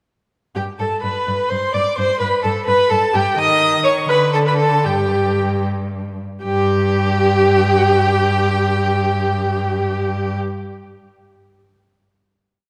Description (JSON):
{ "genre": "quick classical-period movement for string quartet", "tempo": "72-87 BPM (dotted quarters)", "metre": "6/8", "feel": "rubato", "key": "G major", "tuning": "A4 = 440 Hz", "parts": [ { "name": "rich violin", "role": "melody", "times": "0.6-10.4 s", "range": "G5 to D#6", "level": "-24 LUFS", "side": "equal", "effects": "none" }, { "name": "clear violin", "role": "second line", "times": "0.6-10.4 s", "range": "G4 to D#5", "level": "-24 LUFS", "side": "equal", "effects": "none" }, { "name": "warm viola", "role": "accompaniment", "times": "0.6-10.4 s", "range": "G4 to D#5", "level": "-22 LUFS", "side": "equal", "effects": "none" }, { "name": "rich cello", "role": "bass", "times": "0.6-10.4 s", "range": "G2 to D#3", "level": "-23 LUFS", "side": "equal", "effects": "none" } ], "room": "moderate scoring stage reverb, RT60 2.0 s", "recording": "none", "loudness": "-17 LUFS", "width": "mono", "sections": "0.6-6.4 A section; 6.4-9.6 final note", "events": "slowing down 2.7-6.4", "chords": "0.6 G; 3.4 C#sus2/D#; 4.1 Bm7/D; 4.8 N.C." }